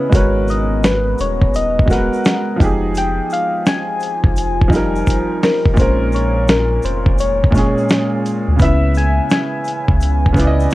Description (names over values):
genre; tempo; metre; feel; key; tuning
lo-fi hip hop; 85 BPM; 4/4; swing 66% on 16ths; unclear; A4 = 441 Hz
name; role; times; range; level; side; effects
soft struck synth lead; melody; 0.0-10.7 s; Bb4 to Ab5; -20 LUFS; left 2 dB; chorus, low-pass filter, analog delay
clear upright piano; accompaniment; 0.0-10.7 s; Bb2 to Fb5; -20 LUFS; right 2 dB; cassette tape, low-pass filter
deep dark ambient pad; sustained chords; 0.0-10.7 s; Db3 to Bb5; -26 LUFS; left 1 dB; chorus, built-in reverb, low-pass filter
soft dub sub bass; bass; 0.1-10.7 s; Eb1 to D2; -18 LUFS; equal; none
dusty soul sampler-style drum kit; drums; 0.1-10.6 s; hi-hat, kick drum, snare drum; -15 LUFS; equal; overdrive, vintage 12-bit sampler grit
egg shaker; percussion; 0.1-10.7 s; none; -42 LUFS; left 4 dB; none
room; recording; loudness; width
light reverb; cassette tape; -13 LUFS; side -17 dB against mid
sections
0.0-10.7 A section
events
drum fill 5.1-5.8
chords
0.1 Abm9; 2.6 Fm9; 5.8 Bbm7; 8.6 Dbm9